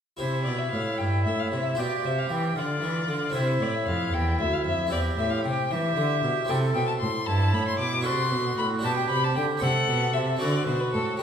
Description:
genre	classical, baroque-style sonata movement with continuo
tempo	76 BPM (dotted quarters)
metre	6/8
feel	straight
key	C major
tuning	A4 = 441 Hz
part	rich violin	melody	0.2-11.2 s	G4 to D6	-29 LUFS	left 5 dB	none
part	clear oboe	second line	0.2-11.2 s	E4 to A4	-31 LUFS	right 5 dB	none
part	harpsichord	accompaniment	0.2-11.2 s	D2 to B4	-29 LUFS	equal	none
part	rich cello	bass	0.2-11.0 s	D2 to E3	-28 LUFS	right 1 dB	none
room	wet recital hall reverb, RT60 1.3 s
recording	minimal, uncompressed stereo recording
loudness	-23 LUFS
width	side -8 dB against mid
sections	0.2-11.2 A section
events	none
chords	0.2 C; 1.8 G7/B; 3.4 C; 4.9 C/E; 6.5 Am7; 8.0 D7; 8.8 G/B; 9.6 Am7; 10.4 D7

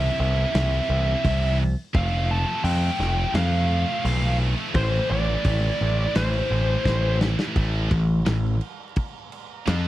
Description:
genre	heavy metal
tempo	86 BPM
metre	4/4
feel	straight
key	A minor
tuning	A4 = 438 Hz
part	high-gain lead guitar	melody	0.0-7.2 s	C5 to A5	-26 LUFS	right 1 dB	distortion, slapback echo
part	scooped high-gain guitar	riff	0.0-9.9 s	A2 to F4	-27 LUFS	equal	distortion
part	growling picked electric bass	bass	0.0-9.9 s	F1 to F2	-23 LUFS	equal	overdrive
part	big rock drum kit	drums	0.5-9.8 s	crash cymbal, hi-hat, kick drum, snare drum	-28 LUFS	equal	none
room	little or no reverb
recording	dry, close 1970s-style studio recording, vinyl crackle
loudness	-20 LUFS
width	side -15 dB against mid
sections	0.0-7.6 A section; 7.6-9.9 B section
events	half time 0.0-7.6; drum fill 6.9-7.6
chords	0.0 C; 1.9 F; 4.8 Am; 7.6 A5

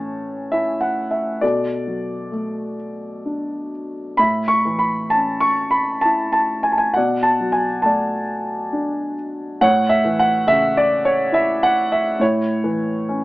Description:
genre	classical, lyrical solo piano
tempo	63-71 BPM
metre	3/4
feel	rubato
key	A major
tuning	A4 = 439 Hz
part	dark concert grand piano	solo	0.0-13.2 s	A2 to C#6	-17 LUFS	equal	none
room	light reverb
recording	AM radio sound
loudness	-17 LUFS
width	side -19 dB against mid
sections	0.0-13.2 A section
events	none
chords	0.0 A; 1.4 Bm7; 4.2 A; 7.0 Bm7; 9.6 A

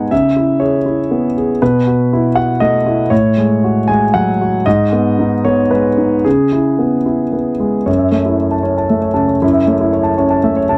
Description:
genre	neoclassical minimalist piano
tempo	108-122 BPM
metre	3/4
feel	rubato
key	F# dorian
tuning	A4 = 440 Hz
part	warm concert grand piano	solo	0.0-10.8 s	F#2 to A5	-14 LUFS	equal	none
room	light reverb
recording	dry, close 1970s-style studio recording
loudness	-14 LUFS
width	mono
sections	0.0-7.9 A section; 7.9-10.8 B section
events	none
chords	0.1 C#m7; 1.6 B7sus4; 3.1 F#madd9/A; 4.7 G#m; 6.3 C#m7; 7.9 F#m7

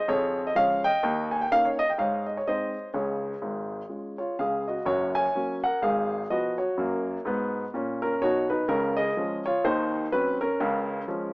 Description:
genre	jazz, stride piano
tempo	125 BPM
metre	4/4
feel	swing 59% on 8ths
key	Db major, F# major from 4.9 s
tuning	A4 = 439 Hz
part	warm baby grand piano	solo	0.0-11.3 s	F#1 to Ab5	-24 LUFS	equal	none
room	light reverb, studio ambience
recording	rough home demo mix, small speaker sound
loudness	-24 LUFS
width	side -25 dB against mid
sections	0.0-4.9 A section; 4.9-11.3 B section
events	none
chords	0.1 Db/F; 1.0 Eb5; 2.0 Ab; 2.9 Db; 4.9 F#; 5.8 Fdim/Ab; 6.8 F#; 8.7 C#; 9.6 Cdim/Eb; 10.6 C#

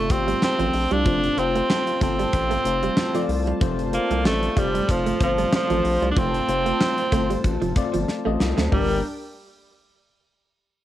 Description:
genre	1980s-style pop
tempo	94 BPM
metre	4/4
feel	swing 55% on 16ths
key	unclear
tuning	A4 = 440 Hz
part	edgy alto saxophone	melody	0.0-9.0 s	F3 to D4	-23 LUFS	right 2 dB	cassette tape
part	FM electric piano	accompaniment	0.0-9.0 s	G2 to Eb5	-27 LUFS	left 7 dB	chorus, cassette tape
part	brassy analog pad	sustained chords	0.0-9.0 s	D4 to A5	-32 LUFS	equal	chorus, cassette tape
part	direct-recorded clean electric guitar	riff	0.0-8.9 s	F3 to Bb3	-29 LUFS	right 7 dB	ensemble chorus, cassette tape
part	round analog bass	bass	0.0-9.0 s	F1 to D2	-27 LUFS	equal	none
part	gated 80s drum kit	drums	0.1-8.9 s	hi-hat, kick drum, snare drum, toms	-25 LUFS	equal	cassette tape
room	moderate studio reverb, RT60 0.6 s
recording	home recording on cassette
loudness	-19 LUFS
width	side -13 dB against mid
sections	0.0-8.7 A section; 8.7-10.8 B section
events	drum fill 8.1-8.7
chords	0.0 F; 8.7 Gm

